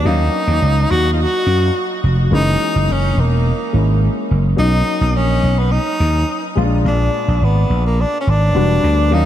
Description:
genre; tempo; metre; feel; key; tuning
polished 1980s jazz-funk pop; 106 BPM; 4/4; straight; F# major; A4 = 440 Hz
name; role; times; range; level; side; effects
breathy tenor saxophone; melody; 0.0-9.3 s; A#3 to F#4; -19 LUFS; left 1 dB; tape echo
warm concert grand piano; accompaniment; 0.0-9.3 s; A#2 to E#5; -22 LUFS; left 2 dB; wide subtle chorus
vintage slap bass; bass; 0.1-9.3 s; E1 to F#2; -15 LUFS; equal; none
room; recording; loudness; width
light reverb, studio reverb; none; -13 LUFS; side -11 dB against mid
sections
0.0-9.3 A section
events
none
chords
0.1 D#m7; 2.3 F#7; 4.6 Bmaj7; 6.6 A#7; 8.5 Em7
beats
| 0.05 0.62 1.19 1.75 | 2.32 2.89 3.45 4.02 | 4.59 5.15 5.72 6.29 | 6.85 7.42 7.98 8.55 | 9.11

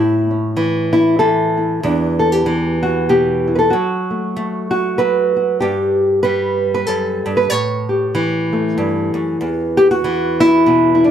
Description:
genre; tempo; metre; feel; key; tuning
folk, solo fingerstyle acoustic guitar; 95 BPM; 3/4; swing 59% on 8ths; E dorian; A4 = 440 Hz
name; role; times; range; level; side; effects
nylon-string guitar; solo; 0.0-11.1 s; E2 to C#5; -14 LUFS; equal; none
room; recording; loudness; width
moderate studio reverb, RT60 0.6 s; none; -14 LUFS; side -9 dB against mid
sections
0.0-11.1 A section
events
none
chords
0.0 A; 1.8 Em7; 3.7 F#madd11; 5.6 Gmaj9; 7.5 A7; 9.4 E5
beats
0.56 1.19 | 1.82 2.45 3.09 | 3.72 4.35 4.98 | 5.61 6.24 6.87 | 7.50 8.13 8.77 | 9.40 10.03 10.66

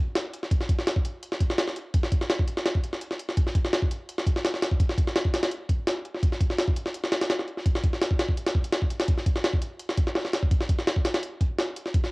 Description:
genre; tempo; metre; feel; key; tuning
drum and bass; 168 BPM; 4/4; straight; none; none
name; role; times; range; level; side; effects
jungle sampler-style drum kit; drums; 0.2-12.1 s; hi-hat, kick drum, snare drum; -24 LUFS; equal; small room reverb
room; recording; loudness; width
light reverb; home recording on cassette; -24 LUFS; side -27 dB against mid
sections
0.0-12.1 A section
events
none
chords
none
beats
0.15 | 0.51 0.87 1.23 1.58 | 1.94 2.30 2.65 3.01 | 3.37 3.73 4.08 4.44 | 4.80 5.16 5.51 5.87 | 6.23 6.58 6.94 7.30 | 7.66 8.01 8.37 8.73 | 9.08 9.44 9.80 10.15 | 10.51 10.87 11.23 11.58 | 11.94

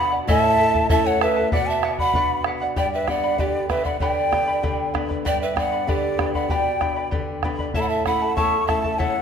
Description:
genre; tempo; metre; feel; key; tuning
andean folk, Andean ensemble; 96 BPM; 2/4; straight; unclear; A4 = 440 Hz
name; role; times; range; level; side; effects
breathy mellow quena; melody; 0.0-9.2 s; D5 to C#6; -23 LUFS; left 3 dB; none
breathy mellow pan flute; second line; 0.0-9.2 s; G4 to A5; -25 LUFS; right 8 dB; none
charango; accompaniment; 0.0-9.2 s; E4 to B5; -27 LUFS; left 1 dB; none
flamenco guitar; accompaniment; 0.0-9.2 s; E2 to G4; -29 LUFS; left 3 dB; none
bombo; percussion; 0.3-9.1 s; none; -26 LUFS; equal; none
room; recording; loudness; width
moderate concert hall reverb, RT60 1.8 s; minimal, uncompressed stereo recording; -19 LUFS; side -7 dB against mid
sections
0.0-2.8 A section; 2.8-9.2 B section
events
none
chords
0.3 A; 1.5 Bm; 2.8 G; 7.7 A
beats
| 0.28 0.90 | 1.52 2.15 | 2.77 3.39 | 4.01 4.63 | 5.25 5.88 | 6.50 7.12 | 7.74 8.37 | 8.99

